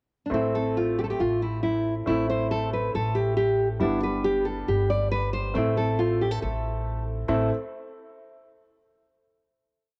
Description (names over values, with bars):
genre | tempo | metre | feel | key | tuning
klezmer | 138 BPM | 2/4 | straight | A minor | A4 = 441 Hz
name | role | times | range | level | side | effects
nylon-string guitar | melody | 0.3-7.5 s | C4 to D5 | -29 LUFS | equal | cassette tape
clear upright piano | accompaniment | 0.3-7.5 s | G3 to E4 | -32 LUFS | equal | cassette tape
upright bass | bass | 0.3-7.5 s | G1 to A1 | -32 LUFS | equal | none
room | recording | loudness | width
moderate spring reverb, RT60 2.6 s | home recording on cassette | -26 LUFS | mono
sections
0.0-0.3 pickup bar; 0.3-7.3 A section; 7.3-8.2 final chord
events
none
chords
0.3 Am; 3.8 G; 5.5 Am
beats
| 0.31 0.75 | 1.19 1.63 | 2.06 2.50 | 2.94 3.37 | 3.81 4.25 | 4.68 5.12 | 5.55 5.98 | 6.42 6.85 | 7.29